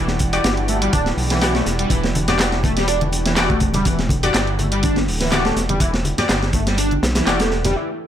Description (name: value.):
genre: breakbeat, breaks.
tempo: 123 BPM.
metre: 4/4.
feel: swing 54% on 16ths.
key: E minor.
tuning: A4 = 441 Hz.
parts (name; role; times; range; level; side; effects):
lush unison pad; sustained chords; 0.0-7.7 s; E3 to G4; -28 LUFS; right 1 dB; chorus, sidechain pumping.
overdriven synth lead; riff; 0.0-7.9 s; E3 to D4; -23 LUFS; equal; distortion, phaser, ensemble chorus, digital delay.
dark detuned saw bass; bass; 0.0-7.8 s; D1 to B1; -22 LUFS; equal; none.
crunchy breakbeat drum kit; drums; 0.1-7.8 s; hi-hat, kick drum, snare drum; -21 LUFS; equal; none.
punchy analog drum machine; drums; 0.1-7.7 s; handclaps, hi-hat; -27 LUFS; right 1 dB; none.
orchestra-hit-like synth stab; stabs; 0.3-7.4 s; F#4 to D5; -24 LUFS; left 3 dB; built-in reverb, digital delay.
congas; percussion; 2.2-7.7 s; none; -27 LUFS; left 2 dB; none.
room: light reverb, small room ambience.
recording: none.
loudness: -16 LUFS.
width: side -10 dB against mid.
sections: 0.0-8.1 A section.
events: break 7.8-8.1.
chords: 0.0 Em9.